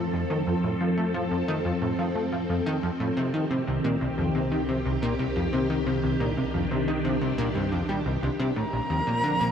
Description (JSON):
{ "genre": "ambient, sequencer-driven space music", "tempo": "89 BPM", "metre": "4/4", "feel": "straight", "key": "C dorian", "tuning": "A4 = 444 Hz", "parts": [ { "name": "phased string machine", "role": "sustained chords", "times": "0.0-9.5 s", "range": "Eb3 to Bb4", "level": "-27 LUFS", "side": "equal", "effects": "ensemble chorus, phaser" }, { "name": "plucky analog bass", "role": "riff", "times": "0.0-9.5 s", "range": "Bb1 to A3", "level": "-27 LUFS", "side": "equal", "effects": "lush chorus, tape echo" }, { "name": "analog drone", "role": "bass", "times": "0.0-9.5 s", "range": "Bb1 to F2", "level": "-38 LUFS", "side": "equal", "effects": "chorus" }, { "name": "mellow silver concert flute", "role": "melody", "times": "8.6-9.5 s", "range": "Bb5", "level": "-26 LUFS", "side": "equal", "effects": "tape echo" } ], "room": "wet lush hall reverb, RT60 2.8 s", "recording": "dreamy mix soaked in reverb", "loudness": "-24 LUFS", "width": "side -8 dB against mid", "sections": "0.0-9.5 A section", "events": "fade-in on synth drone 0.0-9.5", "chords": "0.0 F; 3.2 Cm; 8.6 Bbsus2" }